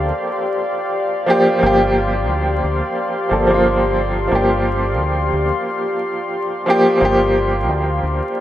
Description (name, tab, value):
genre	trip hop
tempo	89 BPM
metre	4/4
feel	swing 58% on 16ths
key	G minor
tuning	A4 = 440 Hz
part	clear upright piano	accompaniment	0.0-8.4 s	F3 to A4	-17 LUFS	equal	tremolo, tape echo
part	warbly tape-like pad	sustained chords	0.0-8.4 s	G4 to C6	-21 LUFS	left 1 dB	chorus, built-in reverb
part	deep dub fingered electric bass	bass	0.0-8.2 s	G1 to D2	-21 LUFS	equal	tube saturation
room	moderate lush hall reverb, RT60 2.2 s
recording	rough home demo mix, vinyl crackle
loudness	-15 LUFS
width	side -12 dB against mid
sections	0.0-8.4 A section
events	none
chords	0.0 Gm7